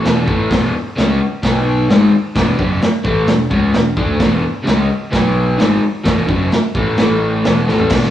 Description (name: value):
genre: garage rock duo or trio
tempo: 130 BPM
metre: 4/4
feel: straight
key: E mixolydian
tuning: A4 = 440 Hz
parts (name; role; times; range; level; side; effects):
- crunchy overdriven guitar; riff; 0.0-8.1 s; E2 to D4; -15 LUFS; left 1 dB; spring reverb
- raw garage drum kit; drums; 0.0-8.0 s; crash cymbal, hi-hat, kick drum, snare drum, toms; -17 LUFS; equal; none
- growling fingered electric bass; bass; 0.1-8.1 s; E1 to D2; -22 LUFS; equal; overdrive
room: moderate large studio reverb, RT60 0.8 s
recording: band playing live in one room, cassette tape, studio ambience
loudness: -12 LUFS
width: side -11 dB against mid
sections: 0.0-7.9 A section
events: drum fill 7.7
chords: 0.0 E; 1.4 B5; 1.9 E; 5.1 B5; 5.6 E; 7.0 A5; 7.4 E5